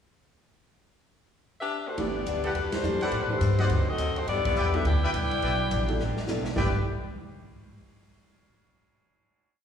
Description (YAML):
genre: jazz, big band swing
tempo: 209 BPM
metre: 4/4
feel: swing 62% on 8ths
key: G major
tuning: A4 = 442 Hz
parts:
  - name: clear saxophone section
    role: melody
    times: 1.6-6.7 s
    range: G3 to G5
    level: -29 LUFS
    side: left 3 dB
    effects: slapback echo
  - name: picked acoustic archtop guitar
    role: accompaniment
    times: 2.0-6.7 s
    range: G2 to B4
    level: -38 LUFS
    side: left 4 dB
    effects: slapback echo
  - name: warm baby grand piano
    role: accompaniment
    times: 2.0-6.7 s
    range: E3 to A4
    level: -33 LUFS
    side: right 2 dB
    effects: slapback echo
  - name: upright bass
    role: bass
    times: 2.0-6.7 s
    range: G1 to A2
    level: -28 LUFS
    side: equal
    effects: none
  - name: swinging big-band drum kit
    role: drums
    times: 2.0-6.6 s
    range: hi-hat, kick drum, ride cymbal, snare drum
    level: -35 LUFS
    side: equal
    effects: none
  - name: bright trumpet section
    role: stabs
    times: 2.4-6.7 s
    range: G4 to G5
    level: -32 LUFS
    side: equal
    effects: slapback echo
room: light reverb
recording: live gig heard through the venue's PA, recital hall reverb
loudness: -24 LUFS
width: side -8 dB against mid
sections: 0.8-2.0 pickup bar; 2.0-6.6 A section; 6.6-7.7 final chord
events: band accent 2.7, 4.4; drum fill 6.0-6.6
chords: 0.8 G6; 2.5 Em11; 3.1 Am9; 3.7 D7b9; 4.3 G6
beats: | 0.83 1.12 1.40 1.69 | 1.98 2.26 2.55 2.84 | 3.12 3.41 3.70 3.98 | 4.27 4.56 4.85 5.13 | 5.42 5.71 5.99 6.28 | 6.57